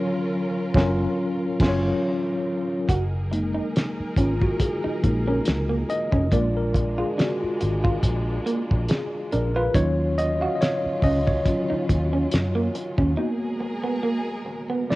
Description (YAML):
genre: R&B, neo-soul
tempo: 70 BPM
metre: 4/4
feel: swing 55% on 16ths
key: F# major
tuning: A4 = 440 Hz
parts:
  - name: tine electric piano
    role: accompaniment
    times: 0.0-15.0 s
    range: F3 to E#5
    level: -25 LUFS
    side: left 1 dB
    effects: medium stereo tremolo
  - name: dark studio string section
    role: sustained chords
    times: 0.0-15.0 s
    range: D#3 to A#4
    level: -34 LUFS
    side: equal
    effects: none
  - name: cloth-damped thuddy drum kit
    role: drums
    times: 0.7-15.0 s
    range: crash cymbal, hi-hat, kick drum, snare drum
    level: -23 LUFS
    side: equal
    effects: cassette tape
  - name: vintage muted fingered electric bass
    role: bass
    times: 0.8-13.1 s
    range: E#1 to F#2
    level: -25 LUFS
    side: equal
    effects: none
  - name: electric guitar through a small old amp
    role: second line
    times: 2.9-14.8 s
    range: A#3 to F#4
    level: -27 LUFS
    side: right 2 dB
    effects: none
room: small room ambience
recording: home recording on cassette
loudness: -21 LUFS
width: side -19 dB against mid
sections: 0.0-2.9 A section; 2.9-15.0 B section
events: break 0.0-2.9, 13.2-15.0; band accent 0.0-2.9; tine electric piano solo 2.9-15.0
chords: 0.0 F#maj7; 2.9 F#69; 6.3 A#7; 9.7 D#m9; 13.2 G#m9